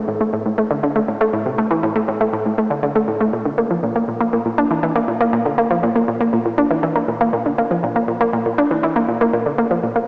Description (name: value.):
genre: ambient.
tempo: 120 BPM.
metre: 4/4.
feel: straight.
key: unclear.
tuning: A4 = 440 Hz.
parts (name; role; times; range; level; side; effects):
analog pluck; solo; 0.1-10.0 s; A2 to D4; -15 LUFS; equal; chorus, cassette tape, analog delay.
room: wet lush hall reverb, RT60 2.6 s.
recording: dreamy mix soaked in reverb, cassette tape, small speaker sound.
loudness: -15 LUFS.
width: side -36 dB against mid.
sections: 0.0-10.1 A section.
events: none.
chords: none.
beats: 0.33 0.83 | 1.33 1.83 2.33 2.83 | 3.33 3.83 4.33 4.83 | 5.33 5.83 6.33 6.83 | 7.33 7.83 8.33 8.83 | 9.33 9.83.